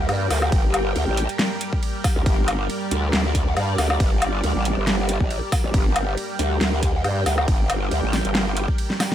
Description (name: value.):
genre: heavy wobble dubstep.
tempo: 138 BPM.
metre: 4/4.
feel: swing 54% on 16ths, half-time.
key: G minor.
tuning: A4 = 439 Hz.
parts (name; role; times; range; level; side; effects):
lush unison pad; sustained chords; 0.0-9.1 s; G3 to G5; -28 LUFS; right 1 dB; chorus, phaser, sidechain pumping.
growl bass; bass; 0.0-8.7 s; G1 to G2; -22 LUFS; equal; chorus, overdrive.
dubstep drum kit; drums; 0.1-9.1 s; hi-hat, ride cymbal, snare drum, woodblock; -25 LUFS; equal; none.
electronic kick drum; drums; 0.5-8.8 s; none; -21 LUFS; equal; overdrive.
room: digital ambience.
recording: none.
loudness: -19 LUFS.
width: side -11 dB against mid.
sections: 0.0-9.1 A section.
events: drum fill 8.9.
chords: 0.0 Gm.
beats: 0.09 | 0.52 0.96 1.39 1.83 | 2.26 2.70 3.13 3.57 | 4.00 4.43 4.87 5.30 | 5.74 6.17 6.61 7.04 | 7.48 7.91 8.35 8.78.